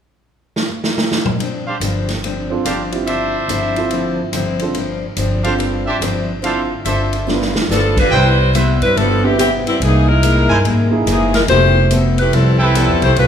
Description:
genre	jazz, big band swing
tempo	143 BPM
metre	4/4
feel	swing 64% on 8ths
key	unclear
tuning	A4 = 440 Hz
part	swinging big-band drum kit	drums	0.6-13.3 s	crash cymbal, hi-hat, kick drum, ride cymbal, rim click, snare drum, toms	-22 LUFS	equal	none
part	picked steel-string acoustic guitar	accompaniment	1.4-13.3 s	G2 to B4	-22 LUFS	left 4 dB	none
part	bright trumpet section	stabs	1.7-13.1 s	D4 to G#5	-21 LUFS	right 1 dB	none
part	upright bass	bass	1.8-13.3 s	F1 to G2	-18 LUFS	equal	none
part	warm upright piano	accompaniment	2.5-12.1 s	B2 to A4	-22 LUFS	right 4 dB	none
part	clear saxophone section	melody	7.7-13.3 s	E3 to C5	-15 LUFS	left 1 dB	none
room	wet recital hall reverb, RT60 1.4 s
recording	recorded in a church or concert hall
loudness	-13 LUFS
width	side -8 dB against mid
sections	0.0-1.4 A section; 1.4-8.1 B section; 8.1-13.3 C section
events	drum fill 0.5-1.4, 7.3-7.7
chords	0.0 N.C.; 1.4 G7sus4; 7.3 G7; 8.1 Cmaj7; 9.8 C7alt; 11.5 Fmaj9#11

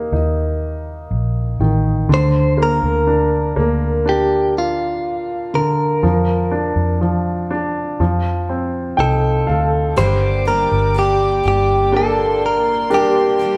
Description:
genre	pop ballad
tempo	61 BPM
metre	4/4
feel	straight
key	Bb major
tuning	A4 = 440 Hz
part	direct-recorded clean electric guitar	melody	0.0-13.6 s	F4 to C5	-20 LUFS	equal	none
part	clear grand piano	accompaniment	0.0-13.6 s	D3 to G5	-22 LUFS	equal	none
part	vintage muted fingered electric bass	bass	0.0-13.6 s	G1 to F2	-22 LUFS	equal	none
part	warm studio string section	sustained chords	10.0-13.6 s	Bb3 to D6	-30 LUFS	equal	none
part	picked steel-string acoustic guitar	arpeggios	10.0-13.6 s	G2 to G4	-30 LUFS	equal	none
room	wet large studio reverb, RT60 1.4 s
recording	band playing live in one room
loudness	-17 LUFS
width	mono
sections	0.0-10.0 A section; 10.0-13.6 B section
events	grand piano fill 8.5-10.0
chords	0.0 Eb; 2.1 Bb/D; 6.0 Bb/F; 8.0 F7; 10.0 Gm

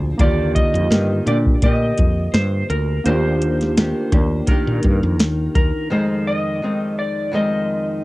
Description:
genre	indie pop, bedroom pop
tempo	84 BPM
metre	4/4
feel	swing 55% on 16ths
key	Eb major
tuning	A4 = 440 Hz
part	nylon-string guitar	accompaniment	0.0-8.0 s	F2 to G4	-22 LUFS	left 1 dB	wide subtle chorus, warbly pitch drift, cassette tape
part	warbly lo-fi synth keys	accompaniment	0.0-5.9 s	D3 to Ab4	-26 LUFS	right 2 dB	chorus, cassette tape
part	woody fretless electric bass	bass	0.0-5.7 s	D2 to Bb2	-20 LUFS	equal	none
part	clean lap steel guitar	melody	0.2-8.0 s	Bb4 to Eb5	-24 LUFS	equal	wide subtle chorus, cassette tape, tape echo
part	soft vintage rhythm box	drums	0.2-5.7 s	hi-hat, kick drum, snare drum	-18 LUFS	equal	vintage 12-bit sampler grit, cassette tape
room	light reverb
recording	home recording on cassette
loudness	-16 LUFS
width	side -19 dB against mid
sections	0.0-5.9 A section; 5.9-8.0 A section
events	none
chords	0.2 Ebmaj7; 5.9 Fm7

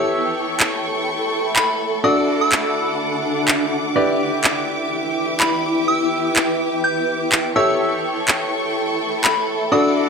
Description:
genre	piano house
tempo	125 BPM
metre	4/4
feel	swing 56% on 16ths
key	unclear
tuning	A4 = 438 Hz
part	soft synth bell	melody	0.0-9.9 s	B5 to G6	-22 LUFS	left 1 dB	chorus, ping-pong delay
part	rich symphonic violin section	sustained chords	0.0-10.1 s	G4 to D6	-24 LUFS	equal	none
part	clear grand piano	riff	0.0-10.1 s	D4 to D5	-23 LUFS	left 1 dB	low-pass filter
part	granular cloud pad	texture	0.0-10.1 s	D4 to B5	-22 LUFS	right 1 dB	built-in reverb
part	electronic handclaps	drums	0.6-9.3 s	none	-18 LUFS	right 1 dB	none
room	moderate plate reverb, RT60 1.3 s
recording	none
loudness	-16 LUFS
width	side -5 dB against mid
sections	0.0-10.1 A section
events	none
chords	0.0 A7; 2.0 D; 4.0 Em7; 7.6 A7

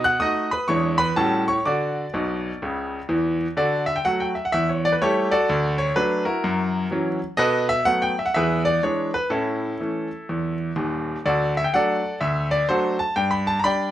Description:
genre	jazz, stride piano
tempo	125 BPM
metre	4/4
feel	swing 64% on 8ths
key	D major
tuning	A4 = 440 Hz
part	bright grand piano	solo	0.0-13.9 s	Eb1 to F#6	-20 LUFS	equal	none
room	light reverb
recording	none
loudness	-20 LUFS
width	side -12 dB against mid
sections	0.0-3.6 A section; 3.6-13.9 A section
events	grand piano fill 2.1-3.6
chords	0.0 B7; 0.7 E7; 1.2 A6; 1.7 D; 4.5 A5/E; 5.5 D; 6.4 F#7; 7.4 B5; 8.4 E7; 9.3 A; 11.2 D; 13.2 G

